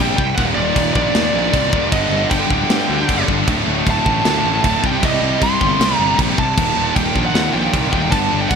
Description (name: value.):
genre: heavy metal.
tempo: 155 BPM.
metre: 4/4.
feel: straight.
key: unclear.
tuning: A4 = 442 Hz.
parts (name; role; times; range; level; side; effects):
high-gain lead guitar; melody; 0.0-8.6 s; D5 to C6; -20 LUFS; right 2 dB; distortion, digital delay.
heavy high-gain guitar; riff; 0.0-8.6 s; D2 to G3; -22 LUFS; right 12 dB; distortion.
high-gain distorted guitar; riff; 0.0-8.6 s; D2 to G3; -22 LUFS; left 14 dB; distortion.
overdriven semi-hollow guitar; riff; 0.0-8.6 s; D2 to C4; -24 LUFS; left 1 dB; none.
fuzz picked electric bass; bass; 0.0-8.6 s; D1 to G2; -22 LUFS; equal; overdrive.
tight metal drum kit; drums; 0.2-8.6 s; crash cymbal, kick drum, snare drum; -20 LUFS; equal; none.
room: light reverb, small room ambience.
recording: bright 1980s-style digital production.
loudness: -14 LUFS.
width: side -6 dB against mid.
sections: 0.0-8.6 A section.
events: none.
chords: 0.4 Eb5; 1.9 G5; 3.5 D5; 4.8 Cm; 6.6 Eb.